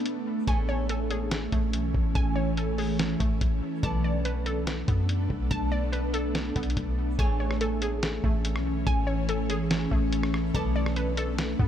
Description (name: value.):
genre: hip hop, atmospheric cloud-rap.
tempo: 143 BPM.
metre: 4/4.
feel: half-time.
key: A major.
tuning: A4 = 440 Hz.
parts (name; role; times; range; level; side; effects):
ethereal airy pad; sustained chords; 0.0-11.7 s; E3 to D4; -30 LUFS; right 1 dB; ensemble chorus, built-in reverb, sidechain pumping.
glassy wavetable pluck; arpeggios; 0.0-11.7 s; A3 to A5; -34 LUFS; equal; chorus, ping-pong delay.
flamenco guitar; texture; 0.0-11.7 s; A3 to D5; -42 LUFS; right 1 dB; none.
lo-fi sampler-style drum kit; drums; 0.1-11.7 s; hi-hat, kick drum, rim click, snare drum; -30 LUFS; equal; none.
soft 808-style bass; bass; 0.5-11.7 s; A1 to F#2; -29 LUFS; equal; none.
room: little or no reverb.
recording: none.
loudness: -25 LUFS.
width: side -10 dB against mid.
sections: 0.0-7.2 A section; 7.2-11.7 B section.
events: break 0.0-0.5.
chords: 0.5 Amaj7; 3.8 Bm7; 7.2 Amaj7; 10.5 Bm7.